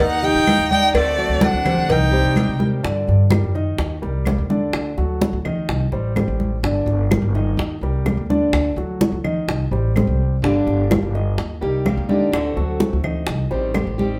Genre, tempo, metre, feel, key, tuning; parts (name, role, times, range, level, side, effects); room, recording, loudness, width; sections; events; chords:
latin, Cuban son and guajira; 126 BPM; 4/4; straight; G harmonic minor; A4 = 441 Hz
warm violin; melody; 0.0-2.6 s; D5 to G5; -22 LUFS; equal
bright trumpet; second line; 0.0-2.6 s; A3 to Eb4; -29 LUFS; equal
picked steel-string acoustic guitar; accompaniment; 0.0-2.8, 10.4-14.2 s; D3 to G4; -28 LUFS; equal
dark grand piano; arpeggios; 0.0-14.1 s; D3 to Eb5; -27 LUFS; equal
upright bass; bass; 0.0-14.2 s; G1 to Eb3; -24 LUFS; equal
congas; percussion; 0.0-14.2 s; -25 LUFS; equal
claves; percussion; 0.5-14.0 s; -37 LUFS; equal
cowbell and bongos; percussion; 0.5-14.0 s; -28 LUFS; equal
wet large studio reverb, RT60 0.9 s; band playing live in one room; -19 LUFS; mono
0.0-2.8 A section; 2.8-14.2 B section
drum fill 2.6
0.0 Eb; 0.9 D7; 1.9 Cm; 2.8 Gm; 3.8 Eb; 4.7 D; 5.7 Cm; 6.6 Gm; 7.6 Eb; 8.5 D; 9.5 Cm; 10.4 Gm; 11.4 Eb; 12.3 D7; 13.3 Cm